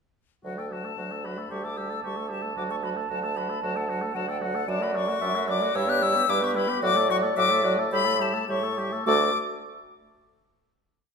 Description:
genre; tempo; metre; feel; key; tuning
quick classical-period movement for wind quintet; 102-115 BPM; 4/4; straight; D major; A4 = 440 Hz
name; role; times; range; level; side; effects
bright silver concert flute; melody; 0.4-9.4 s; F#5 to F#6; -28 LUFS; left 6 dB; none
dark French horn; accompaniment; 0.4-9.3 s; F#3 to B3; -33 LUFS; right 1 dB; none
clear bassoon; bass; 0.4-9.3 s; D2 to A2; -30 LUFS; right 2 dB; none
warm oboe; second line; 0.5-9.3 s; D4 to A4; -33 LUFS; left 4 dB; none
warm clarinet; accompaniment; 1.5-9.3 s; F#4 to A5; -30 LUFS; right 4 dB; none
room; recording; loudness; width
wet recital hall reverb, RT60 1.6 s; none; -23 LUFS; side -5 dB against mid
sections
0.4-9.1 A section; 9.1-11.1 final chord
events
none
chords
0.4 D; 1.5 Dsus24; 2.6 D; 4.7 D/F#; 5.8 Em/G; 6.8 D/A; 7.9 A7; 9.1 D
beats
| 0.45 0.98 1.52 2.05 | 2.57 3.11 3.63 4.16 | 4.68 5.21 5.75 6.29 | 6.83 7.37 7.93 8.49 | 9.07

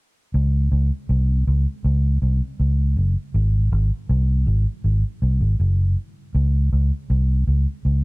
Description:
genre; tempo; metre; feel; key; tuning
reggae; 80 BPM; 4/4; straight; unclear; A4 = 439 Hz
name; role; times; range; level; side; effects
vintage muted fingered electric bass; solo; 0.3-8.0 s; F#1 to C#2; -17 LUFS; equal; none
room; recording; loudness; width
little or no reverb; dry, close 1970s-style studio recording; -18 LUFS; side -27 dB against mid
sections
0.3-8.0 A section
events
none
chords
none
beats
| 0.34 1.09 1.84 2.59 | 3.34 4.09 4.84 5.59 | 6.34 7.09 7.84

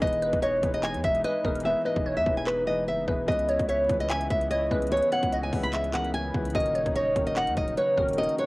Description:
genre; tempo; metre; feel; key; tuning
hip hop, trap; 147 BPM; 4/4; half-time; unclear; A4 = 439 Hz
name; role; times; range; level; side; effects
flamenco guitar; melody; 0.0-8.5 s; B4 to B5; -26 LUFS; equal; cassette tape, analog delay
felt-muted upright piano; accompaniment; 0.0-8.5 s; D#3 to B4; -33 LUFS; left 3 dB; cassette tape
warm analog pad; sustained chords; 0.0-8.5 s; C#3 to E4; -38 LUFS; equal; chorus, cassette tape
distorted 808-style bass; bass; 0.0-8.3 s; D#1 to E2; -35 LUFS; equal; distortion
trap drum kit; drums; 0.0-8.5 s; handclaps, hi-hat, kick drum; -32 LUFS; equal; cassette tape
glassy wavetable pluck; second line; 0.2-8.5 s; A#4 to E5; -34 LUFS; equal; chorus, cassette tape, analog delay
room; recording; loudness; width
moderate spring reverb, RT60 2.2 s; home recording on cassette, vinyl crackle; -24 LUFS; side -21 dB against mid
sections
0.0-8.5 A section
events
hi-hats muted 1.6-3.3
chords
0.0 Emaj7; 3.3 C#m7; 6.5 D#m7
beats
| 0.02 0.43 0.83 1.24 | 1.65 2.06 2.47 2.88 | 3.28 3.69 4.10 4.51 | 4.92 5.32 5.73 6.14 | 6.55 6.96 7.37 7.77 | 8.18

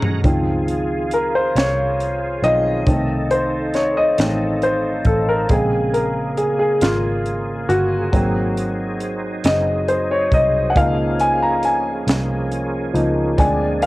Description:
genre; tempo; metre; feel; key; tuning
slow gospel; 46 BPM (dotted quarters); 6/8; straight; Db major; A4 = 440 Hz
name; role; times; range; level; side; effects
warm grand piano; accompaniment; 0.0-13.9 s; Db3 to Bb5; -18 LUFS; left 1 dB; cassette tape
bright tonewheel organ; sustained chords; 0.0-13.9 s; Db3 to Bb5; -27 LUFS; right 2 dB; fast rotary speaker, chorus vibrato, cassette tape
vintage muted picked electric bass; bass; 0.0-13.9 s; Gb1 to D2; -24 LUFS; equal; none
crisp fusion drum kit; drums; 0.0-13.9 s; hi-hat, kick drum, snare drum, toms; -21 LUFS; equal; none
mellow French horn section; sustained chords; 0.2-13.9 s; F4 to F5; -30 LUFS; right 1 dB; cassette tape
room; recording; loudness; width
light reverb, small room ambience; home recording on cassette; -16 LUFS; side -19 dB against mid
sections
0.2-13.9 A section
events
drum fill 0.0; grand piano solo 0.2-13.9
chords
0.2 Dbmaj7; 2.9 F7/C; 5.5 Bbm7; 8.1 Ab7; 10.8 Db6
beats
| 0.25 1.56 | 2.87 4.19 | 5.50 6.82 | 8.13 9.44 | 10.76 12.07 | 13.38

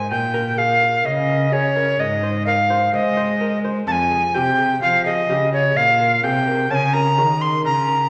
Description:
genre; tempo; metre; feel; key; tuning
classical, baroque-style sonata movement with continuo; 64 BPM; 4/4; straight; unclear; A4 = 440 Hz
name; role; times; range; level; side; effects
tenor recorder; melody; 0.0-8.1 s; Db5 to C6; -20 LUFS; equal; none
lute; accompaniment; 0.0-8.1 s; F2 to C5; -27 LUFS; equal; none
rich cello; bass; 0.0-8.1 s; F2 to Ab3; -27 LUFS; equal; none
room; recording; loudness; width
wet recital hall reverb, RT60 1.8 s; none; -18 LUFS; mono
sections
0.0-8.1 A section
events
none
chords
0.1 Bbmadd11; 2.0 Ab; 3.9 Fm; 5.8 Bbm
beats
| 0.11 1.06 2.00 2.94 | 3.88 4.82 5.76 6.71 | 7.65

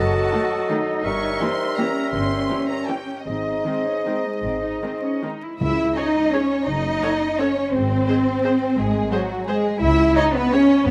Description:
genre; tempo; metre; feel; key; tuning
classical; 145-186 BPM; 3/4; rubato; unclear; A4 = 440 Hz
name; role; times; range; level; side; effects
warm symphonic violin section; melody; 0.0-10.6 s; D#5 to Db6; -36 LUFS; equal; none
clear clarinet; second line; 0.0-5.4 s; A4 to B#4; -31 LUFS; equal; none
small flute group; second line; 0.0-5.2 s; D#4 to Db5; -36 LUFS; equal; none
warm oboe; second line; 0.0-5.4 s; D#5 to E5; -31 LUFS; equal; none
mellow bassoon; accompaniment; 0.0-5.4 s; F#3 to G#3; -31 LUFS; equal; none
rich symphonic double bass section; bass; 0.0-10.9 s; F#1 to C#2; -29 LUFS; equal; none
warm symphonic cello section; bass; 0.0-10.9 s; F#3 to F#4; -25 LUFS; equal; none
dark symphonic violin section; second line; 0.3-10.9 s; B#3 to E5; -31 LUFS; equal; none
rich symphonic viola section; accompaniment; 0.3-10.6 s; D#3 to C#5; -32 LUFS; equal; none
warm French horn section; sustained chords; 5.6-10.9 s; F#3 to E4; -26 LUFS; equal; none
timpani; percussion; 5.6-6.1, 10.9 s; F#2 to C#3; -32 LUFS; equal; none
room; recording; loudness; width
light reverb; vinyl crackle; -21 LUFS; mono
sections
0.0-5.6 A section; 5.6-10.9 B section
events
none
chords
0.0 D#dim/F#; 1.1 Gdim7; 3.3 G#; 5.6 C#m; 6.7 F#m; 7.7 G#; 9.8 C#m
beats
0.33 0.70 | 1.05 1.41 1.78 | 2.14 2.50 2.89 | 3.27 3.66 4.06 | 4.45 4.83 5.24 | 5.61 5.97 6.33 | 6.68 7.03 7.39 | 7.74 8.08 8.44 | 8.78 9.12 9.48 | 9.82 10.16 10.53 | 10.86

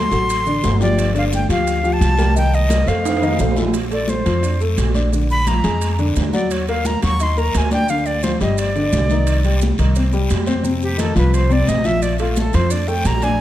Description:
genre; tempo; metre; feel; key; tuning
Afro-Cuban jazz; 174 BPM; 4/4; straight; Bb major; A4 = 441 Hz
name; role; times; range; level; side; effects
breathy bright jazz flute; melody; 0.0-13.4 s; F4 to Db6; -22 LUFS; equal; none
warm baby grand piano; accompaniment; 0.0-13.4 s; C3 to Eb5; -21 LUFS; left 2 dB; none
upright bass; bass; 0.0-13.4 s; G1 to F2; -19 LUFS; equal; none
congas; percussion; 0.1-13.4 s; none; -26 LUFS; left 1 dB; none
guiro; percussion; 0.1-13.4 s; none; -34 LUFS; left 4 dB; none
maracas; percussion; 0.1-13.4 s; none; -36 LUFS; right 8 dB; none
timbales; percussion; 0.1-13.4 s; none; -28 LUFS; right 6 dB; none
room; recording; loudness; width
light reverb; none; -15 LUFS; side -13 dB against mid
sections
0.0-3.7 A section; 3.7-13.4 B section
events
drum fill 3.0-3.7; flute solo 3.7-13.4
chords
0.0 D7; 1.0 G7sus2; 2.4 Cm7; 3.0 F7; 3.7 Bbmaj9; 5.1 Bb7; 6.5 Ebm; 7.9 G7sus4; 8.6 G5; 9.3 Cmadd9; 10.6 F5; 12.0 Bbmaj7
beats
0.29 0.63 | 0.98 1.32 1.67 2.01 | 2.36 2.70 3.05 3.40 | 3.74 4.09 4.43 4.78 | 5.12 5.47 5.82 6.16 | 6.51 6.85 7.20 7.54 | 7.89 8.23 8.58 8.93 | 9.27 9.62 9.96 10.30 | 10.65 10.99 11.34 11.68 | 12.02 12.37 12.71 13.05 | 13.40

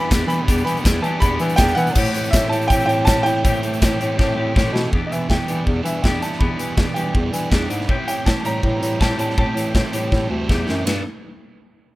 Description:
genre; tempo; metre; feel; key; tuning
indie rock; 162 BPM; 4/4; straight; unclear; A4 = 440 Hz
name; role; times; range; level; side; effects
bright upright piano; melody; 0.0-10.5 s; Eb5 to B5; -25 LUFS; right 1 dB; analog delay
combo organ; sustained chords; 0.0-11.0 s; D4 to B5; -40 LUFS; equal; none
clean electric guitar; riff; 0.0-11.0 s; E3 to A4; -27 LUFS; left 4 dB; none
sludgy distorted guitar; riff; 0.0-11.0 s; E2 to B4; -26 LUFS; right 5 dB; overdrive, lush chorus
mellow bass clarinet; bass; 0.0-11.0 s; D2 to E3; -22 LUFS; equal; none
big rock drum kit; drums; 0.1-11.0 s; crash cymbal, hi-hat, kick drum, ride cymbal, snare drum; -20 LUFS; equal; none
room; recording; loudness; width
small room ambience; rough home demo mix; -17 LUFS; side -18 dB against mid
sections
0.0-4.9 A section; 4.9-10.9 B section; 10.9-12.0 C section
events
drum fill 4.2-4.9, 10.1-10.9; upright piano solo 4.9-10.9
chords
0.0 Em7; 2.0 Am7; 4.9 Em7; 7.9 Am7; 10.9 Gadd9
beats
0.11 | 0.48 0.85 1.22 1.59 | 1.96 2.33 2.70 3.07 | 3.44 3.81 4.18 4.55 | 4.92 5.29 5.66 6.04 | 6.41 6.78 7.15 7.52 | 7.89 8.26 8.63 9.00 | 9.37 9.74 10.12 10.49 | 10.86

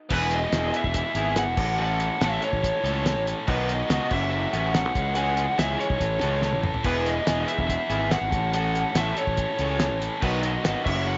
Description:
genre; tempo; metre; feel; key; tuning
indie rock; 142 BPM; 4/4; straight; E major; A4 = 439 Hz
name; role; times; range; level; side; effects
lead guitar through a small cranked amp; melody; 0.1-11.2 s; B4 to F#5; -30 LUFS; equal; overdrive
biting overdriven guitar; riff; 0.1-11.2 s; D#3 to A4; -33 LUFS; equal; none
overdriven electric guitar; riff; 0.1-10.9 s; D#3 to A4; -33 LUFS; equal; lush chorus
fuzz fingered electric bass; bass; 0.1-11.2 s; E1 to C#2; -31 LUFS; equal; overdrive
cloth-damped thuddy drum kit; drums; 0.1-11.0 s; crash cymbal, hi-hat, kick drum, snare drum, splash cymbal, toms; -31 LUFS; equal; none
room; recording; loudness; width
moderate plate reverb, RT60 1.0 s, small room ambience; nothing above 7.7 kHz; -25 LUFS; mono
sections
0.1-11.2 A section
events
drum fill 6.4-6.8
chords
0.1 E; 1.6 A6; 3.5 B; 4.1 F#m; 4.9 C#m; 6.0 A; 6.8 E; 8.3 A6; 10.2 B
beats
| 0.11 0.53 0.95 1.37 | 1.79 2.21 2.63 3.06 | 3.48 3.90 4.32 4.74 | 5.16 5.58 6.00 6.42 | 6.84 7.27 7.69 8.11 | 8.53 8.96 9.38 9.80 | 10.22 10.64 11.07

